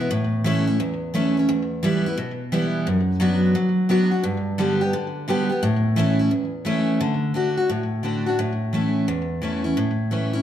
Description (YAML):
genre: country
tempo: 174 BPM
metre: 4/4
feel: swing 66% on 8ths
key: unclear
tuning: A4 = 440 Hz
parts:
  - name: picked steel-string acoustic guitar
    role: solo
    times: 0.0-10.4 s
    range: E2 to G4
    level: -20 LUFS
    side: equal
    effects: slapback echo
room: moderate large studio reverb, RT60 1.2 s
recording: close, detailed microphones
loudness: -20 LUFS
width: side -10 dB against mid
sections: 0.0-7.0 A section; 7.0-10.4 B section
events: none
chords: 0.1 A; 1.5 Em; 2.9 Bm/F#; 4.2 G; 5.6 A; 7.0 D; 8.4 A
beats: | 0.10 0.45 0.80 1.14 | 1.49 1.83 2.18 2.52 | 2.87 3.21 3.56 3.90 | 4.25 4.59 4.94 5.28 | 5.63 5.97 6.32 6.66 | 7.01 7.35 7.70 8.04 | 8.38 8.73 9.07 9.42 | 9.76 10.11